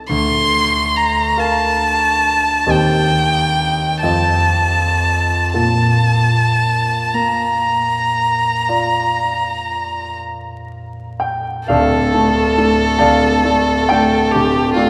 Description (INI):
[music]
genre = classical, romantic duo for violin and grand piano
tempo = 37-48 BPM (dotted quarters)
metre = 12/8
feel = rubato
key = Bb major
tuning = A4 = 440 Hz
[part]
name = clear concert grand piano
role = accompaniment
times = 0.0-14.9 s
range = D1 to A5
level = -19 LUFS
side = equal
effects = none
[part]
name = clear violin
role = melody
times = 0.1-14.9 s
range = F4 to C6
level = -18 LUFS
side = equal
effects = none
[sound]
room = wet church reverb, RT60 3.4 s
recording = recorded in a church or concert hall, vinyl crackle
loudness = -16 LUFS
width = mono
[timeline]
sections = 0.0-11.7 A section; 11.7-14.9 B section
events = none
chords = 0.1 Bb/D; 2.7 Cm/Eb; 4.0 F7; 5.5 Bb; 11.7 Dm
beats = | 0.09 1.37 2.68 4.02 | 5.54 7.14 8.68 10.19 | 11.70 13.00 14.33